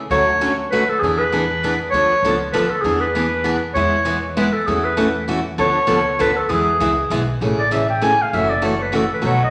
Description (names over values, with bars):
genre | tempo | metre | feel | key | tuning
acoustic string swing (jazz manouche) | 197 BPM | 3/4 | swing 58% on 8ths | A major | A4 = 440 Hz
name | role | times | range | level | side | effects
breathy clarinet | melody | 0.1-9.5 s | G#4 to G#5 | -20 LUFS | equal | none
picked steel-string acoustic guitar | accompaniment | 0.1-9.4 s | B2 to A4 | -23 LUFS | equal | none
upright bass | bass | 0.1-9.5 s | F#1 to E2 | -29 LUFS | equal | none
room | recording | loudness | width
wet large studio reverb, RT60 1.2 s | none | -18 LUFS | mono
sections
0.1-7.4 A section; 7.4-9.5 B section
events
clarinet solo 7.4-9.5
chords
0.1 Dmaj7; 1.0 E7; 1.9 Dm6; 2.8 E7; 3.8 E; 4.7 A6/E; 5.6 Dm6; 6.5 E; 7.4 Amaj7; 8.3 F#m7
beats
| 0.11 0.41 0.72 | 1.02 1.33 1.63 | 1.94 2.24 2.54 | 2.85 3.15 3.46 | 3.76 4.07 4.37 | 4.67 4.98 5.28 | 5.58 5.89 6.19 | 6.50 6.80 7.10 | 7.41 7.71 8.02 | 8.32 8.63 8.93 | 9.23